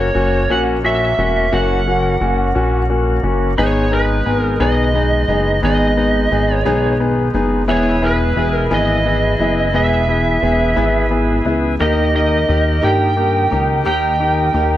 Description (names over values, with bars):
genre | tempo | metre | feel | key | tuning
six-eight pop ballad | 58 BPM (dotted quarters) | 6/8 | straight | G# minor | A4 = 436 Hz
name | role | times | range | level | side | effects
lead guitar through a small cranked amp | melody | 0.0-14.8 s | B4 to G5 | -19 LUFS | right 2 dB | overdrive, digital delay
warm concert grand piano | accompaniment | 0.0-14.8 s | A#3 to G#4 | -18 LUFS | left 3 dB | none
bright tonewheel organ | sustained chords | 0.0-14.8 s | D#3 to B4 | -24 LUFS | equal | overdrive, slow rotary speaker
chorused synth bass | bass | 0.0-14.8 s | E1 to G2 | -19 LUFS | equal | none
fingerpicked plugged-in steel-string acoustic guitar | arpeggios | 3.6-14.8 s | G#2 to A#4 | -24 LUFS | equal | none
room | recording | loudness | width
light reverb, small room ambience | none | -13 LUFS | side -13 dB against mid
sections
0.0-14.8 A section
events
none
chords
0.0 F#; 3.6 G#m; 7.7 E; 11.8 D#